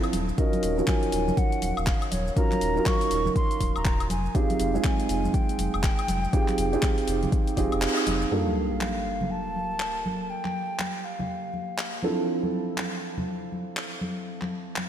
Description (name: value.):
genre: deep house.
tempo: 121 BPM.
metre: 4/4.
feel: swing 61% on 16ths.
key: G minor.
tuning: A4 = 440 Hz.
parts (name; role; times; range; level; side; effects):
felt-muted upright piano; stabs; 0.0-14.9 s; F3 to Bb4; -28 LUFS; right 3 dB; sidechain pumping, diffuse ambient delay.
deep house drum kit; drums; 0.0-14.9 s; handclaps, hi-hat, shaker, woodblock; -33 LUFS; left 2 dB; overdrive.
sub bass with octave; bass; 0.1-8.3 s; Eb1 to F1; -30 LUFS; left 1 dB; tube saturation.
congas; percussion; 0.1-14.9 s; none; -34 LUFS; left 1 dB; none.
mellow concert flute; melody; 0.4-12.0 s; Db5 to Db6; -32 LUFS; equal; diffuse ambient delay.
electronic kick drum; drums; 0.4-7.7 s; none; -25 LUFS; equal; overdrive.
sub drop; sound effects; 8.3-10.3 s; none; -34 LUFS; left 1 dB; none.
room: moderate lush hall reverb, RT60 2.3 s.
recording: dreamy mix soaked in reverb.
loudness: -24 LUFS.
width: side -10 dB against mid.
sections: 0.0-8.3 A section; 8.3-14.9 B section.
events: kick drops out 7.8-8.3; band accent 7.8; impact 8.3-10.3.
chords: 0.1 Ebm9; 4.1 Fm9; 8.3 Gm9; 12.0 Dm9.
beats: | 0.38 0.88 1.37 1.87 | 2.37 2.86 3.36 3.85 | 4.35 4.84 5.34 5.84 | 6.33 6.83 7.32 7.82 | 8.31 8.81 9.31 9.80 | 10.30 10.79 11.29 11.79 | 12.28 12.78 13.27 13.77 | 14.27 14.76.